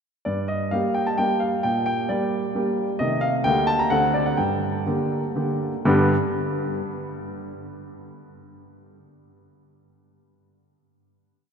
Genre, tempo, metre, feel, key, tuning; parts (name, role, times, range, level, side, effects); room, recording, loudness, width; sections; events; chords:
classical-period piano sonatina; 120-133 BPM; 3/4; straight; G minor; A4 = 441 Hz
warm grand piano; solo; 0.3-6.1 s; D2 to Bb5; -21 LUFS; equal
wet cathedral reverb, RT60 5.1 s; in a vast, echoing space; -21 LUFS; side -6 dB against mid
0.3-5.9 A section; 5.9-7.3 final chord
slowing down 2.3-5.9
0.3 Gm; 1.6 Gm/Bb; 3.0 Adim/C; 3.5 Gm/D; 3.9 D7; 4.4 Gm; 5.9 G